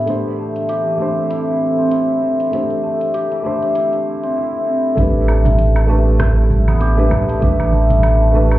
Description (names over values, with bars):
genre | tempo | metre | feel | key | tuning
organic downtempo | 98 BPM | 4/4 | swing 57% on 16ths | unclear | A4 = 440 Hz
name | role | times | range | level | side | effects
felt-muted upright piano | accompaniment | 0.0-8.6 s | A3 to C5 | -21 LUFS | right 1 dB | sidechain pumping, ping-pong delay
warbly tape-like pad | sustained chords | 0.0-4.4 s | E3 to C5 | -24 LUFS | right 2 dB | chorus, built-in reverb, sidechain pumping
santur | arpeggios | 0.0-8.6 s | E3 to G4 | -19 LUFS | left 1 dB | ping-pong delay
deep house drum kit | drums | 0.1-8.6 s | hi-hat, rim click, shaker, woodblock | -30 LUFS | right 2 dB | none
round analog bass | bass | 5.0-8.6 s | A1 | -14 LUFS | right 1 dB | none
electronic kick drum | drums | 5.0-7.6 s | none | -20 LUFS | right 1 dB | none
congas | percussion | 5.3-8.5 s | none | -23 LUFS | right 4 dB | none
room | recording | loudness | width
light reverb, small room ambience | heard muffled through a wall, club reverb, EQ | -14 LUFS | side -15 dB against mid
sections
0.0-5.0 A section; 5.0-8.6 B section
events
filter sweep on ambient pad 0.0-5.0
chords
0.1 Am; 5.0 G/A